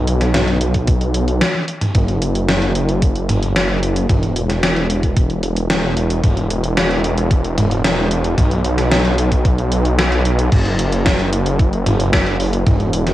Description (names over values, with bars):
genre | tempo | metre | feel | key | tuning
synthwave | 112 BPM | 4/4 | straight | unclear | A4 = 440 Hz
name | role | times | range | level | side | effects
wide detuned saw bass | bass | 0.0-13.1 s | E1 to B1 | -16 LUFS | equal | chorus, sidechain pumping
gated 80s digital drum machine | drums | 0.1-13.1 s | crash cymbal, hi-hat, snare drum, toms | -19 LUFS | equal | gated reverb, gated reverb snare, cassette tape
electronic kick drum | drums | 0.7-12.8 s | none | -15 LUFS | equal | cassette tape
room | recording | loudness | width
light reverb, digital ambience | home recording on cassette | -14 LUFS | side -14 dB against mid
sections
0.0-2.0 A section; 2.0-10.5 B section; 10.5-13.1 C section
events
drum fill 1.4-2.0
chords
none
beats
0.34 0.88 1.42 | 1.95 2.49 3.02 3.56 | 4.09 4.63 5.17 5.70 | 6.24 6.77 7.31 7.84 | 8.38 8.92 9.45 9.99 | 10.52 11.06 11.59 12.13 | 12.67